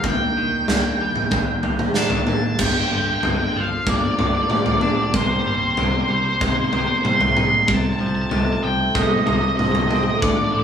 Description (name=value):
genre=post-rock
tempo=94 BPM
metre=4/4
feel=straight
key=G minor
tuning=A4 = 440 Hz
part: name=octave-fuzz lead guitar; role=melody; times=0.0-10.6 s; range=C5 to C6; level=-22 LUFS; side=right 1 dB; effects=distortion
part: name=hollow soft pad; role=sustained chords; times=0.0-10.6 s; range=Eb3 to A4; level=-30 LUFS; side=right 2 dB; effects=chorus
part: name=clean electric guitar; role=arpeggios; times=0.0-10.6 s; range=G2 to Eb4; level=-28 LUFS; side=left 2 dB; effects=none
part: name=fingered electric bass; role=bass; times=0.0-10.6 s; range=G1 to C3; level=-26 LUFS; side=equal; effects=none
part: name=huge arena drum kit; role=drums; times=0.0-10.4 s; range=crash cymbal, kick drum, snare drum, toms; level=-21 LUFS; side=equal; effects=none
room=wet stone room reverb, RT60 1.0 s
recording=band playing live in one room, studio reverb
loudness=-17 LUFS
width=side -8 dB against mid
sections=0.0-2.6 A section; 2.6-10.6 B section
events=none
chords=0.0 Ebmaj7; 2.6 Gm7; 5.1 Cm7; 7.7 F/C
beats=| 0.03 0.67 1.31 1.95 | 2.59 3.23 3.86 4.50 | 5.14 5.77 6.41 7.05 | 7.68 8.32 8.95 9.59 | 10.22